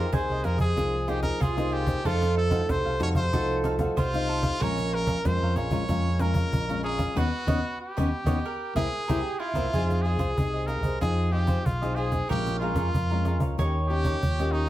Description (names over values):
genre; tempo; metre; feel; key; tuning
samba and choro; 94 BPM; 4/4; straight; F minor from 9.7 s; A4 = 439 Hz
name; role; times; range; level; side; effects
brilliant trumpet; melody; 0.0-14.7 s; Eb4 to Db5; -31 LUFS; equal; tape echo
mandolin; second line; 0.0-14.7 s; E4 to Db5; -33 LUFS; right 4 dB; none
cavaquinho; accompaniment; 0.0-14.7 s; Eb4 to Bb5; -35 LUFS; right 1 dB; none
nylon-string guitar; accompaniment; 0.0-14.7 s; F2 to Ab4; -32 LUFS; left 4 dB; none
fingered electric bass with an envelope filter; bass; 0.0-14.7 s; Bb1 to F2; -28 LUFS; equal; none
cajon; drums; 0.1-14.6 s; none; -30 LUFS; equal; none
room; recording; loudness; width
wet studio reverb, RT60 0.5 s; heard from further back in the room; -24 LUFS; side -14 dB against mid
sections
0.0-9.7 A section; 9.7-14.7 B section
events
band accent 7.2-9.7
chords
0.0 Fm11; 2.1 F7b9; 4.6 Bbm7; 7.2 Eb7alt; 8.5 C7; 9.7 Fm7; 12.3 Bbm7; 13.6 Eb7